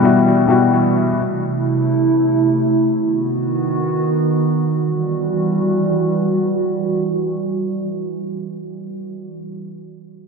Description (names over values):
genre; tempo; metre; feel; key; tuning
hip hop; free time; none; none; E harmonic minor; A4 = 440 Hz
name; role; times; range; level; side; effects
felt-muted upright piano; accompaniment; 0.0-1.2 s; B2 to F#4; -14 LUFS; left 4 dB; low-pass filter, dub echo
warbly tape-like pad; sustained chords; 0.0-9.2 s; C3 to F#4; -17 LUFS; right 2 dB; chorus, built-in reverb, low-pass filter
room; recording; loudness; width
light reverb, studio ambience; echo-heavy mix; -15 LUFS; side -4 dB against mid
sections
0.0-4.8 A section; 4.8-8.4 B section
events
filter sweep 0.0-4.8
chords
0.0 Emadd9; 1.2 Am; 3.0 B; 4.8 Emadd9